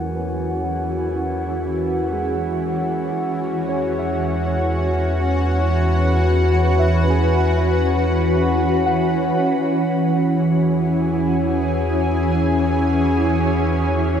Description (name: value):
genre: ambient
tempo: 58 BPM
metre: 3/4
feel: straight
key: E major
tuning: A4 = 440 Hz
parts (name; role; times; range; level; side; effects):
- shimmering ambient pad; sustained chords; 0.0-14.2 s; E3 to B4; -19 LUFS; equal; chorus, built-in reverb
- muted felt-like synth keys; arpeggios; 0.0-9.9 s; F#4 to G#5; -28 LUFS; right 1 dB; chorus, ping-pong delay
- round analog bass; bass; 0.0-14.2 s; E2; -22 LUFS; equal; none
- glass harmonica; texture; 0.0-9.4 s; F#4 to F#5; -27 LUFS; left 1 dB; none
room: wet huge ambient reverb, RT60 7.5 s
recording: dark, warm production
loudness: -17 LUFS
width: side -8 dB against mid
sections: 0.0-9.4 A section; 9.4-14.2 B section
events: fade-in on synth keys 0.0-9.4; fade-in on analog synth bass 0.0-9.4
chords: 0.0 E69; 3.2 F#sus4/E